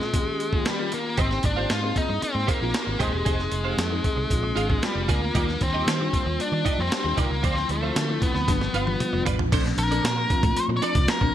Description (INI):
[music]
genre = polished 1980s jazz-funk pop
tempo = 115 BPM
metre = 4/4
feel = straight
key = unclear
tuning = A4 = 445 Hz
[part]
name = octave-fuzz lead guitar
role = melody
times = 0.0-11.3 s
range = G3 to D5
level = -27 LUFS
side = left 1 dB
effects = distortion
[part]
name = bell-like FM electric piano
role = accompaniment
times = 0.0-11.3 s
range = Bb2 to Ab4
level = -30 LUFS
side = left 3 dB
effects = tremolo, ensemble chorus
[part]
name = breakbeat sampler-style drum kit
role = drums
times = 0.0-11.3 s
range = crash cymbal, hi-hat, kick drum, snare drum, toms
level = -26 LUFS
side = right 1 dB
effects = gated reverb
[part]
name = twelve-string electric guitar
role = riff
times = 1.2-11.3 s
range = D4 to F5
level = -32 LUFS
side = right 6 dB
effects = ensemble chorus
[part]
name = vintage muted fingered electric bass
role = bass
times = 1.2-11.3 s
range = Eb1 to Eb3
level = -28 LUFS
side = equal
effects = none
[sound]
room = light reverb, digital ambience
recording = bright 1980s-style digital production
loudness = -22 LUFS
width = side -11 dB against mid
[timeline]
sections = 0.0-9.5 A section; 9.5-11.3 B section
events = drum fill 8.5-9.5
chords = 0.1 Eb7; 1.2 Abmaj7; 3.3 Fm7; 4.3 Bb7; 5.3 Ebmaj7; 7.4 Dm7; 8.5 G7; 9.5 Bbmaj9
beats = 0.14 0.66 | 1.18 1.70 2.22 2.74 | 3.27 3.79 4.31 4.83 | 5.35 5.87 6.39 6.91 | 7.43 7.96 8.48 9.00 | 9.52 10.04 10.56 11.08